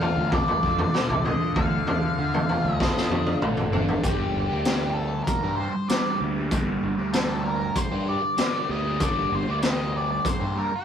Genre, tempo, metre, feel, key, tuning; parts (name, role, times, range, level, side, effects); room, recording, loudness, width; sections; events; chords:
psychedelic rock; 97 BPM; 4/4; straight; G minor; A4 = 440 Hz
octave-fuzz lead guitar; melody; 0.0-10.8 s; G4 to F5; -28 LUFS; left 1 dB; distortion
pedal harmonium; sustained chords; 0.0-4.0 s; D3 to A5; -35 LUFS; right 3 dB
overdriven semi-hollow guitar; riff; 0.0-10.8 s; G2 to A4; -29 LUFS; right 1 dB; phaser
raw garage drum kit; drums; 0.0-10.4 s; hi-hat, kick drum, snare drum, toms; -26 LUFS; equal
fuzz fingered electric bass; bass; 0.2-10.6 s; G1 to D3; -29 LUFS; equal; overdrive
organ-like drone; drone; 5.3-10.8 s; G2 to D3; -42 LUFS; right 3 dB
moderate studio reverb, RT60 0.5 s; rough rehearsal-room recording; -22 LUFS; side -8 dB against mid
0.0-4.0 A section; 4.0-10.8 B section
drum fill 2.8-4.0; lead electric guitar solo 4.0-10.8
0.0 Dm; 4.0 Gm